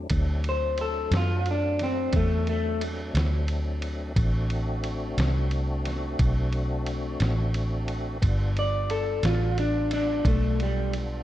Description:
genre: slow blues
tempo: 59 BPM (dotted quarters)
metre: 12/8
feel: straight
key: D mixolydian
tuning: A4 = 442 Hz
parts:
  - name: tonewheel organ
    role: sustained chords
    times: 0.0-11.2 s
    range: F#3 to F#4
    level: -35 LUFS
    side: left 1 dB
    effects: overdrive, chorus vibrato, slow rotary speaker, plate reverb
  - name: vintage muted fingered electric bass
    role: bass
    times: 0.0-11.2 s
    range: G1 to F#2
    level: -26 LUFS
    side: equal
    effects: none
  - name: lo-fi sampler-style drum kit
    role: drums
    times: 0.1-11.1 s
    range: kick drum, ride cymbal, snare drum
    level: -32 LUFS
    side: equal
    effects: none
  - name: electric guitar through a small old amp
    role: melody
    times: 0.5-10.9 s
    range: G3 to D5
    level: -27 LUFS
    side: left 1 dB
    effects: spring reverb, plate reverb
room: light reverb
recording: dark, warm production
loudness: -24 LUFS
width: side -13 dB against mid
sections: 0.1-11.2 A section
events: clean electric guitar solo 0.1-11.2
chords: 0.1 D7; 8.2 G7

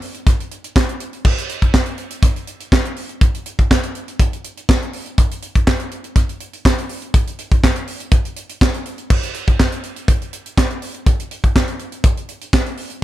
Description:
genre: disco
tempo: 122 BPM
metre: 4/4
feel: straight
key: none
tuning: none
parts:
  - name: tight funk drum kit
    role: drums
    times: 0.0-13.0 s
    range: crash cymbal, handclaps, hi-hat, kick drum, snare drum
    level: -15 LUFS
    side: equal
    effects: none
room: little or no reverb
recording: none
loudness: -16 LUFS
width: side -14 dB against mid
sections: 0.0-1.2 A section; 1.2-9.1 B section; 9.1-13.0 C section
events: none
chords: none

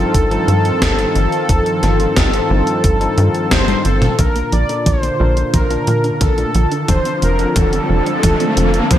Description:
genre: synthwave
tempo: 89 BPM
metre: 4/4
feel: straight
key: unclear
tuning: A4 = 441 Hz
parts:
  - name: soft supersaw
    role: melody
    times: 0.0-9.0 s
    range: A4 to D5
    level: -19 LUFS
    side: equal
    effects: digital delay
  - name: warm analog pad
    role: sustained chords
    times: 0.0-9.0 s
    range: D3 to F4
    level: -22 LUFS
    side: left 1 dB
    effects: chorus, vintage 12-bit sampler grit, sidechain pumping
  - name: tine electric piano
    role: stabs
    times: 0.0-9.0 s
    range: G2 to Bb4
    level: -23 LUFS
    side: left 3 dB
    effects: vintage 12-bit sampler grit, low-pass filter
  - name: tight sequencer bass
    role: bass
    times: 0.0-9.0 s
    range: F1 to Bb2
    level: -16 LUFS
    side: equal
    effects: sidechain pumping
  - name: electronic kick drum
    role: drums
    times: 0.1-9.0 s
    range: none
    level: -16 LUFS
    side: equal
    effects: none
  - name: gated 80s digital drum machine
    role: drums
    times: 0.1-9.0 s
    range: hi-hat, snare drum, toms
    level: -20 LUFS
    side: left 1 dB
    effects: gated reverb, gated reverb snare
  - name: analog pluck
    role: arpeggios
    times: 4.2-9.0 s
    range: F3 to D4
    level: -26 LUFS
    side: right 4 dB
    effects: none
  - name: riser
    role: sound effects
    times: 6.2-9.0 s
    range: none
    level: -24 LUFS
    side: equal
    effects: none
room: light reverb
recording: none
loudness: -13 LUFS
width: side -11 dB against mid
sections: 0.0-4.2 A section; 4.2-9.0 B section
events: drum fill 3.5-4.2, 4.2-9.0; filter sweep on analog synth pad 4.2-9.0; riser 6.2-9.0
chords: 0.0 F7/G; 4.2 Bbmaj7; 6.9 F6

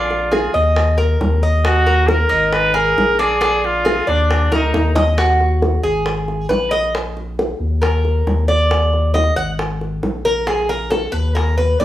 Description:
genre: latin, Cuban son and guajira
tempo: 136 BPM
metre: 4/4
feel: straight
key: Eb harmonic minor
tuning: A4 = 442 Hz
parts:
  - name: clear trumpet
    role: melody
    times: 0.0-4.9 s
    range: D4 to Cb5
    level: -17 LUFS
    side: equal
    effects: none
  - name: Cuban tres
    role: arpeggios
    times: 0.0-11.8 s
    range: D4 to Gb5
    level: -18 LUFS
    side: right 1 dB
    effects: none
  - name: saturated sub bass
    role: bass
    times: 0.0-11.8 s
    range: Ab1 to Eb2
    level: -18 LUFS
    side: left 1 dB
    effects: none
  - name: bongos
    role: percussion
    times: 0.1-11.8 s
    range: none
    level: -22 LUFS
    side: left 1 dB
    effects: none
  - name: claves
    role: percussion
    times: 0.3-4.5 s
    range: none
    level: -32 LUFS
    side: right 1 dB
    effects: none
room: moderate large studio reverb, RT60 1.0 s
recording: band playing live in one room, studio ambience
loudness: -14 LUFS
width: side -13 dB against mid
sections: 0.0-5.2 A section; 5.2-11.8 B section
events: drum fill 4.5-5.2; Cuban tres solo 5.2-11.8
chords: 0.0 Bb7; 0.8 Ebm; 2.5 Ab5; 3.4 Bb7; 4.3 Eb5; 5.2 Ebm; 6.1 Abmadd9; 6.9 Bbsus4; 7.8 Eb5; 9.6 Absus2; 10.5 Abmadd9/Bb

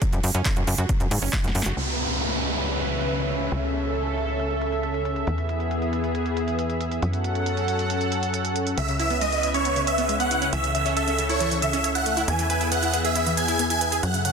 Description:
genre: uplifting trance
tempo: 137 BPM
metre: 4/4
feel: straight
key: E major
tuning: A4 = 440 Hz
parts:
  - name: analog pluck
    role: arpeggios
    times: 0.0-1.7, 8.8-14.3 s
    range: C#3 to C#5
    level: -31 LUFS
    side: right 1 dB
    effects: chorus, sidechain pumping, tape echo
  - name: big-room dance drum kit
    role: drums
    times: 0.0-14.3 s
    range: handclaps, hi-hat, snare drum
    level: -31 LUFS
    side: right 4 dB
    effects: overdrive, sidechain pumping on hats, low-pass filter on hats, low-pass filter on snare, low-pass filter on room
  - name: electronic kick drum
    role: drums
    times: 0.0-1.4 s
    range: none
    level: -24 LUFS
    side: equal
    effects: none
  - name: tight sequencer bass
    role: bass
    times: 0.1-14.3 s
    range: F#1 to G#2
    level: -28 LUFS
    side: equal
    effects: sidechain pumping
  - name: lush unison pad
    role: sustained chords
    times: 1.8-14.3 s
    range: C#3 to F#5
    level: -27 LUFS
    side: equal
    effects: chorus, sidechain pumping
  - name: downlifter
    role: sound effects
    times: 1.8-5.3 s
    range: none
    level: -29 LUFS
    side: right 1 dB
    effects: none
  - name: big supersaw lead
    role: melody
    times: 8.8-14.3 s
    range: C#5 to G#5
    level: -24 LUFS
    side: right 1 dB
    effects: phaser, sidechain pumping, tape echo
room: light reverb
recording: dense, heavily limited modern master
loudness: -22 LUFS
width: side -6 dB against mid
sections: 0.0-1.8 A section; 1.8-14.3 B section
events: drum fill 1.3-1.8; filter sweep on drum 1.8-14.3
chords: 0.0 F#5; 1.8 C#m7; 3.5 A/C#; 5.3 E; 7.0 F#m; 8.8 C#m7; 10.5 A/C#; 12.3 E

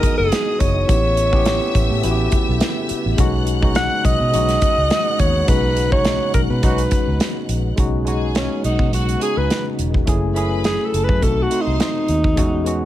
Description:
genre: lush 1970s-style soul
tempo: 104 BPM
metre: 4/4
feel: swing 54% on 16ths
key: B major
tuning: A4 = 440 Hz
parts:
  - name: breathy alto saxophone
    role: melody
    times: 0.0-12.9 s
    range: C#4 to F#5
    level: -21 LUFS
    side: right 1 dB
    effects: none
  - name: bright studio string section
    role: second line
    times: 0.0-12.1 s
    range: F#4 to F#6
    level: -29 LUFS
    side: equal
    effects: none
  - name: tine electric piano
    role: accompaniment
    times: 0.0-12.9 s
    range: G#3 to G#4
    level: -23 LUFS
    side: left 2 dB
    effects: medium stereo tremolo
  - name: soft string machine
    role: sustained chords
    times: 0.0-12.9 s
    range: B2 to G4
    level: -30 LUFS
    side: equal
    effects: ensemble chorus
  - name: modern studio drum kit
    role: drums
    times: 0.0-12.8 s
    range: hi-hat, kick drum, snare drum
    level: -20 LUFS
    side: equal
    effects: none
  - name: vintage muted fingered electric bass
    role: bass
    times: 0.2-12.9 s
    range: E1 to B2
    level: -21 LUFS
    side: equal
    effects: none
  - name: mellow horn section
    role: stabs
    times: 6.6-6.8 s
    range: C#4 to F#4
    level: -27 LUFS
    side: right 4 dB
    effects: none
room: studio ambience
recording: none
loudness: -16 LUFS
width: side -13 dB against mid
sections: 0.0-7.8 A section; 7.8-12.9 B section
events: band accent 5.5-7.8; alto saxophone solo 7.8-12.9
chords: 0.0 Emaj9; 0.9 A9; 3.2 B69; 10.1 F#m7; 11.2 B7b9

